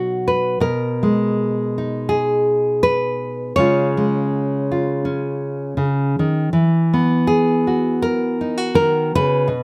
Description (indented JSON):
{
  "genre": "folk, solo fingerstyle acoustic guitar",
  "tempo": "81 BPM",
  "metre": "4/4",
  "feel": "swing 55% on 8ths",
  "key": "unclear",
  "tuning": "A4 = 440 Hz",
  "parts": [
    { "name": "nylon-string guitar", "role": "solo", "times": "0.0-9.6 s", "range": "B2 to C#5", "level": "-19 LUFS", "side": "equal", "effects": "none" }
  ],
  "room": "little or no reverb",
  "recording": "close, detailed microphones",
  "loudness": "-19 LUFS",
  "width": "mono",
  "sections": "0.0-9.6 A section",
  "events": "none",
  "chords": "0.0 B; 0.6 G#madd9/B; 3.6 C#; 6.5 Esus2"
}